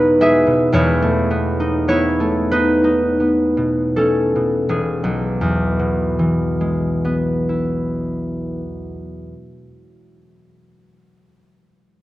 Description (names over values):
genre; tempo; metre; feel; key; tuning
classical, solo harp piece; 25-39 BPM (dotted quarters); 6/8; rubato; E major; A4 = 439 Hz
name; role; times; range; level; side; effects
concert harp; solo; 0.0-10.2 s; E1 to E5; -16 LUFS; equal; none
room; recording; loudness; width
wet recital hall reverb, RT60 1.5 s; worn, warbling old tape, cassette tape, warbly pitch drift; -16 LUFS; side -16 dB against mid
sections
0.0-4.7 A section; 4.7-8.7 B section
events
slowing down 0.0-4.7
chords
0.0 E; 0.7 B7/E; 4.7 E